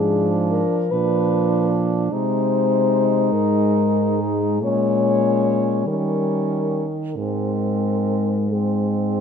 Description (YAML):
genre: classical, lyrical piece for horn quartet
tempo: 44-50 BPM (dotted quarters)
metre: 12/8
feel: rubato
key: Ab major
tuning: A4 = 440 Hz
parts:
  - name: mellow French horn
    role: melody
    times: 0.0-9.2 s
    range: Ab4 to Db5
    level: -23 LUFS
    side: left 5 dB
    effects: none
  - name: warm French horn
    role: second line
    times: 0.0-9.2 s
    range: C4 to Eb4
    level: -25 LUFS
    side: right 7 dB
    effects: none
  - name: mellow French horn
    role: accompaniment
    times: 0.0-9.2 s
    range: F3 to Ab3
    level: -23 LUFS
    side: left 4 dB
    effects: none
  - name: mellow French horn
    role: bass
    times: 0.0-9.2 s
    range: Ab2 to Eb3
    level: -23 LUFS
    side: right 3 dB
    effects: none
room: moderate stone room reverb, RT60 1.3 s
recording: close, detailed microphones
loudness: -18 LUFS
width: side -7 dB against mid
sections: 0.0-9.2 A section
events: none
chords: 0.0 Abdim7; 2.1 Ab/C; 4.6 Bbm7; 5.9 Eb7; 7.2 Ab